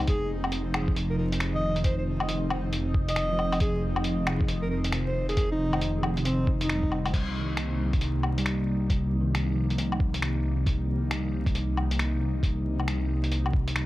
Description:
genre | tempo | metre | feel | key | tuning
future garage | 136 BPM | 4/4 | swing 63% on 16ths | unclear | A4 = 440 Hz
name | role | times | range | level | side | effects
bell-like tine electric piano | accompaniment | 0.0-13.9 s | C3 to G3 | -33 LUFS | right 1 dB | fast stereo tremolo, sidechain pumping, tape echo
airy breathy pad | sustained chords | 0.0-13.9 s | C3 to Eb4 | -33 LUFS | equal | chorus, sidechain pumping
dark detuned saw bass | bass | 0.0-13.9 s | F1 to C2 | -29 LUFS | equal | sidechain pumping
mellow alto saxophone | melody | 0.1-7.1 s | C4 to Eb5 | -32 LUFS | equal | dub echo
electronic kick drum | drums | 0.1-13.6 s | none | -26 LUFS | equal | none
lo-fi sampler-style drum kit | drums | 0.1-13.9 s | crash cymbal, finger snaps, hi-hat, woodblock | -32 LUFS | left 2 dB | none
room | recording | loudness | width
light reverb | echo-heavy mix, vinyl crackle | -24 LUFS | side -17 dB against mid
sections
0.0-7.1 A section; 7.1-13.9 B section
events
none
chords
0.1 F5; 7.1 Cm7

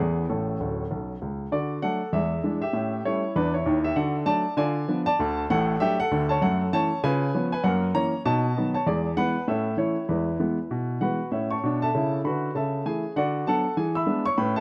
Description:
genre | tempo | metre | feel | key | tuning
jazz, stride piano | 196 BPM | 4/4 | swing 60% on 8ths | D major, A major from 6.4 s | A4 = 441 Hz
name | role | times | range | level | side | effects
clear baby grand piano | solo | 0.0-14.6 s | D1 to E6 | -26 LUFS | equal | tape echo
room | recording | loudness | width
light reverb | dry, close 1970s-style studio recording | -26 LUFS | mono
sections
0.0-1.5 A section; 1.5-11.3 B section; 11.3-14.6 A section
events
grand piano fill 0.6-1.5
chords
0.0 E; 0.3 A; 1.5 D; 2.1 E7; 2.7 A7; 4.0 D; 4.6 Ddim7; 5.2 D; 6.4 F#m7; 7.0 C#7; 7.6 F#7; 8.3 B7; 8.9 E7; 9.5 A; 10.1 E; 11.3 A; 12.5 A/C#; 13.2 Bm/D; 13.8 E7

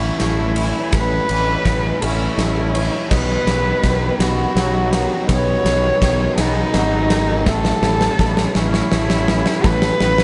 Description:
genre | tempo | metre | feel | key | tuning
post-rock | 55 BPM (dotted quarters) | 6/8 | straight | unclear | A4 = 440 Hz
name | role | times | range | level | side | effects
dark cello | melody | 0.0-10.2 s | D#4 to C#5 | -23 LUFS | equal | slapback echo
airy breathy pad | sustained chords | 0.0-10.2 s | A3 to D#5 | -33 LUFS | equal | none
electric guitar through a small old amp | arpeggios | 0.0-10.2 s | G#4 to E5 | -33 LUFS | equal | none
twangy electric guitar | arpeggios | 0.0-10.2 s | A2 to C#4 | -29 LUFS | equal | ensemble chorus, slapback echo
fuzz fingered electric bass | bass | 0.0-10.2 s | G#1 to B1 | -23 LUFS | equal | overdrive
huge arena drum kit | drums | 0.2-10.2 s | crash cymbal, kick drum, ride cymbal, snare drum | -22 LUFS | equal | none
room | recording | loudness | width
light reverb, small room ambience | nothing above 10.9 kHz | -17 LUFS | mono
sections
0.0-10.2 A section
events
build-up 0.0-10.2; drum fill 0.0-10.2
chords
0.0 A; 3.1 B; 7.5 A

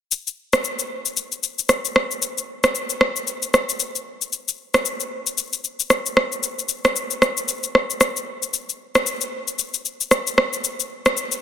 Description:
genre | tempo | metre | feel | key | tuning
afrobeats | 114 BPM | 4/4 | swing 58% on 16ths | none | none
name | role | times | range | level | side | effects
electronic shaker and rim click | drums | 0.1-11.4 s | none | -19 LUFS | left 1 dB | soft clipping on snare
room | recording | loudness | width
moderate plate reverb, RT60 2.2 s | dense, heavily limited modern master | -19 LUFS | side -10 dB against mid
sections
0.1-11.4 A section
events
none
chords
none

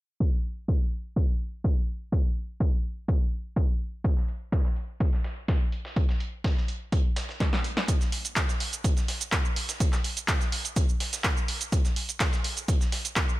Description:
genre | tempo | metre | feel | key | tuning
house | 125 BPM | 4/4 | straight | none | none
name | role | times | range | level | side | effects
electronic kick drum | drums | 0.2-13.3 s | none | -25 LUFS | equal | none
dusty soul sampler-style drum kit | drums | 4.0-13.3 s | hi-hat, snare drum | -39 LUFS | right 1 dB | high-pass filter on hats, high-pass filter on snare, high-pass filter on room
punchy analog drum machine | drums | 7.4-13.4 s | handclaps, hi-hat, shaker, snare drum | -29 LUFS | right 1 dB | none
room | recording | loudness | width
little or no reverb | low-pass filter | -25 LUFS | side -18 dB against mid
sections
0.2-7.9 A section; 7.9-13.4 B section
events
filter sweep 0.2-7.9; drum fill 7.4-7.9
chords
none

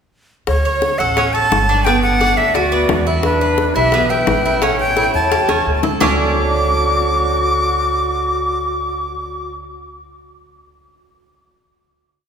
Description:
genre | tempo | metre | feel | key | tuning
latin, Cuban son and guajira | 174 BPM | 4/4 | straight | D major | A4 = 435 Hz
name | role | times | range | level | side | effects
breathy bright jazz flute | melody | 0.5-9.5 s | B4 to D6 | -17 LUFS | equal | none
upright bass | bass | 0.5-9.6 s | G1 to E2 | -22 LUFS | equal | none
bongos | percussion | 0.5-6.1 s | none | -22 LUFS | left 4 dB | none
Cuban tres | arpeggios | 0.7-9.6 s | B3 to C#5 | -20 LUFS | right 3 dB | none
concert flute | second line | 2.5-9.5 s | D4 to C#5 | -23 LUFS | left 2 dB | none
room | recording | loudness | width
wet church reverb, RT60 3.5 s | recorded in a church or concert hall | -13 LUFS | side -7 dB against mid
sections
0.5-6.0 verse; 6.0-8.8 final chord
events
drum fill 5.5-6.0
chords
0.5 Dmaj7; 1.9 Gmaj7; 3.2 Em7; 4.6 A7; 6.0 Dmaj7

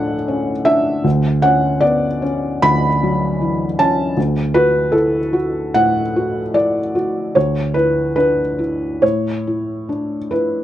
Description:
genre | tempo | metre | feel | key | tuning
neoclassical minimalist piano | 67-79 BPM | 4/4 | rubato | D major | A4 = 440 Hz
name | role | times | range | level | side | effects
felt-muted upright piano | solo | 0.0-10.6 s | D2 to B5 | -15 LUFS | equal | none
room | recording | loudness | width
little or no reverb | dry, close 1970s-style studio recording | -15 LUFS | side -12 dB against mid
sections
0.0-10.6 A section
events
none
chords
0.0 D; 7.3 E5/D; 9.0 A

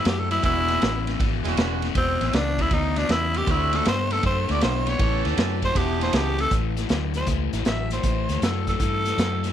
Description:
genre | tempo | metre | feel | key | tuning
electric blues shuffle | 158 BPM | 4/4 | swing 66% on 8ths | A mixolydian | A4 = 440 Hz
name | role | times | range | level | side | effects
growling tenor saxophone | melody | 0.0-9.5 s | C4 to E5 | -26 LUFS | equal | slapback echo
crunchy overdriven guitar | riff | 0.0-9.5 s | E2 to B3 | -29 LUFS | left 16 dB | none
vintage muted fingered electric bass | bass | 0.1-9.5 s | E1 to G2 | -26 LUFS | right 1 dB | none
vintage drum kit | drums | 0.1-9.5 s | hi-hat, kick drum, ride cymbal, snare drum | -26 LUFS | right 1 dB | none
warm horn section | stabs | 0.4-6.4 s | G#3 to A4 | -31 LUFS | right 12 dB | none
room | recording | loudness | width
light reverb, small room ambience | 1960s-style stereo with parts hard left and right | -20 LUFS | side -10 dB against mid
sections
0.0-6.5 A section; 6.5-9.5 B section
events
tenor saxophone solo 0.0-6.5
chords
0.4 E9; 3.5 D9; 5.0 A9; 5.8 E9; 6.5 A5

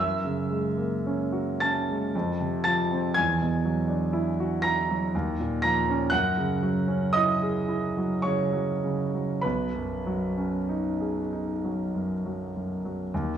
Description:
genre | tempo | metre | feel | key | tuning
classical, impressionist solo piano | 47-61 BPM | 3/4 | rubato | unclear | A4 = 442 Hz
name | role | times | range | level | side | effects
clear concert grand piano | solo | 0.0-13.4 s | B1 to A#6 | -24 LUFS | right 1 dB | none
room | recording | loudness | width
wet recital hall reverb, RT60 1.6 s | studio reverb | -24 LUFS | side -9 dB against mid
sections
0.0-13.1 A section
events
none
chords
0.0 F#9; 2.1 F; 3.2 E9; 5.1 D#sus2; 6.1 F#sus2; 9.4 B69

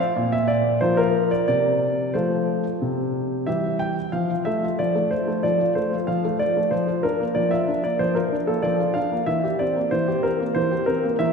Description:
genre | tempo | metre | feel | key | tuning
classical-period piano sonatina | 93 BPM | 4/4 | straight | F major | A4 = 439 Hz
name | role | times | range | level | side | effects
clear grand piano | solo | 0.0-11.3 s | Bb2 to G5 | -20 LUFS | equal | none
room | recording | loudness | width
wet church reverb, RT60 2.9 s | none | -20 LUFS | side -5 dB against mid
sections
0.0-4.1 A section; 4.1-11.3 B section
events
none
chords
0.2 Bb5; 1.5 F/C; 2.8 C; 4.1 F; 6.7 Bb/F; 9.3 C7/E

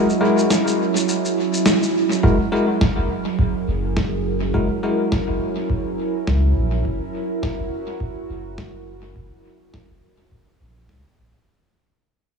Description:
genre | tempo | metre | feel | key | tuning
ambient dub | 104 BPM | 4/4 | swing 58% on 16ths | F# mixolydian | A4 = 440 Hz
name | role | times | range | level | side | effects
warbly tape-like pad | sustained chords | 0.0-11.5 s | F#3 to D#5 | -23 LUFS | right 3 dB | chorus, built-in reverb
bell-like tine electric piano | stabs | 0.0-5.0 s | G#3 to A#4 | -22 LUFS | left 2 dB | dub echo
electronic shaker and snare drum | drums | 0.1-11.0 s | none | -24 LUFS | left 1 dB | overdrive, dub echo
warm sub bass | bass | 2.2-11.3 s | F#1 to C#2 | -21 LUFS | equal | none
electronic kick drum | drums | 2.2-11.0 s | none | -24 LUFS | equal | none
room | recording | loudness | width
moderate echo chamber reverb, RT60 2.4 s | small room ambience | -18 LUFS | side -5 dB against mid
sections
0.0-2.2 A section; 2.2-11.5 B section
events
break 0.0-2.2; band accent 1.7; fade-out 2.2-11.5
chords
0.0 F#7sus2; 2.2 F#9

